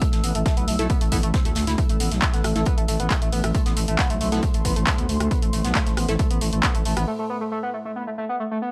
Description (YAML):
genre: driving peak-time techno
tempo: 136 BPM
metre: 4/4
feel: straight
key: A minor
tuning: A4 = 438 Hz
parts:
  - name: overdriven synth lead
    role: riff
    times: 0.0-8.7 s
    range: A3 to E4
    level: -31 LUFS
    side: equal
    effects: tube saturation, lush chorus, sidechain pumping, digital delay
  - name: electronic kick drum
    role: drums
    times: 0.0-6.7 s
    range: none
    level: -25 LUFS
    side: equal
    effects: none
  - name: loose indie drum kit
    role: drums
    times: 0.0-7.0 s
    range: hi-hat, snare drum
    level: -41 LUFS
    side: equal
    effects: none
  - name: punchy analog drum machine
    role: drums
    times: 0.0-7.1 s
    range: handclaps, hi-hat, rim click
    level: -30 LUFS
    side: equal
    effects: none
  - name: deep dark ambient pad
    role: texture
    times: 0.0-7.1 s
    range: A3 to E6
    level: -34 LUFS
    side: equal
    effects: chorus, built-in reverb, sidechain pumping
  - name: growling FM bass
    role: bass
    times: 0.1-7.1 s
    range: A1 to D2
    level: -27 LUFS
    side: equal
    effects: sidechain pumping
  - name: wavetable chord stab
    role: stabs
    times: 0.8-6.1 s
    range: A3 to A4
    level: -32 LUFS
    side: equal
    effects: sidechain pumping, digital delay
room: light reverb, digital ambience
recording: none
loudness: -22 LUFS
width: mono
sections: 0.0-8.7 A section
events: break 7.1-8.7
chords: 0.0 A5